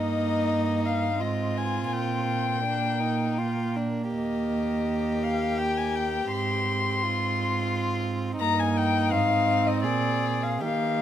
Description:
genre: classical, slow romantic movement for string quartet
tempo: 76-88 BPM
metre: 3/4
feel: rubato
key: Eb major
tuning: A4 = 440 Hz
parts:
  - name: dark violin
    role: melody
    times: 0.0-11.0 s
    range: D5 to C6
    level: -28 LUFS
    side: left 6 dB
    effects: none
  - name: rich violin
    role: second line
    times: 0.0-11.0 s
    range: D4 to Ab4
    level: -31 LUFS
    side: equal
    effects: none
  - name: warm viola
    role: accompaniment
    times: 0.0-11.0 s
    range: Bb3 to C4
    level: -30 LUFS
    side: right 4 dB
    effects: none
  - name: warm cello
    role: bass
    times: 0.0-11.0 s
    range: Eb2 to Eb3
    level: -30 LUFS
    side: right 4 dB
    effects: none
room: light reverb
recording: close, detailed microphones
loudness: -24 LUFS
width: side -10 dB against mid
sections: 0.0-11.0 A section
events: none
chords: 0.0 Eb/G; 1.2 Fm7/Ab; 1.9 Eb/Bb; 3.4 Bb; 4.1 Eb; 6.3 Fm/Ab; 8.4 Eb/G; 9.1 Fm7/Ab; 9.8 Bb7

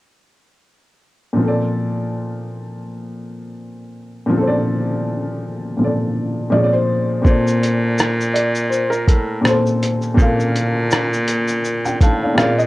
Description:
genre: lo-fi hip hop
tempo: 82 BPM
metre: 4/4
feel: swing 56% on 16ths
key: Bb major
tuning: A4 = 440 Hz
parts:
  - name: dark upright piano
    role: accompaniment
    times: 1.3-12.7 s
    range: Bb2 to A5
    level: -19 LUFS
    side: equal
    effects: cassette tape
  - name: felt-muted upright piano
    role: melody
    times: 6.5-12.7 s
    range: Bb4 to F5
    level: -20 LUFS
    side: left 1 dB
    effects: tape echo
  - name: lo-fi sampler-style drum kit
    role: drums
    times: 7.2-12.7 s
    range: hi-hat, kick drum, rim click, shaker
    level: -17 LUFS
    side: equal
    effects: overdrive
  - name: clear baritone saxophone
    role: bass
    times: 7.3-12.7 s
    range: A2 to Bb2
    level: -20 LUFS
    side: equal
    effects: none
room: moderate small room reverb, RT60 0.5 s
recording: worn, warbling old tape, cassette tape, warbly pitch drift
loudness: -16 LUFS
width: side -18 dB against mid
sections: 1.4-7.3 A section; 7.3-12.7 B section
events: none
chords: 1.4 Bbmaj9; 6.5 Bb9; 7.3 Bbmaj9

